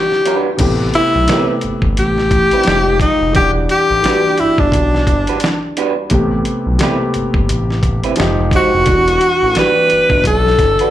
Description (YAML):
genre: R&B, neo-soul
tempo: 87 BPM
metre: 4/4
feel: swing 57% on 16ths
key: A dorian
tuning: A4 = 440 Hz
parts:
  - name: breathy tenor saxophone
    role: melody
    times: 0.0-10.9 s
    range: D4 to B4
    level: -13 LUFS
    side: left 1 dB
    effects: slapback echo, tape echo
  - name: dark grand piano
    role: accompaniment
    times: 0.0-10.9 s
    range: C3 to F#5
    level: -19 LUFS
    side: left 1 dB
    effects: slapback echo
  - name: boom bap sampler-style drum kit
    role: drums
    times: 0.1-10.9 s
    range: crash cymbal, hi-hat, kick drum, snare drum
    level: -18 LUFS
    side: equal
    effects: none
  - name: electric guitar through a small old amp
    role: second line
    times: 0.3-10.9 s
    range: G3 to C5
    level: -19 LUFS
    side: right 6 dB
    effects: lush chorus, slapback echo
  - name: smooth gliding synth bass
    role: bass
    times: 0.6-10.8 s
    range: E1 to B1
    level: -18 LUFS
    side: equal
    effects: none
room: light reverb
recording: live gig heard through the venue's PA, club reverb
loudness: -11 LUFS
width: side -12 dB against mid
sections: 0.6-10.9 A section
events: none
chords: 0.0 Em9; 0.6 Am9; 2.7 Fm9; 3.4 Em9; 6.1 Am9; 8.2 Fm9; 8.9 Em9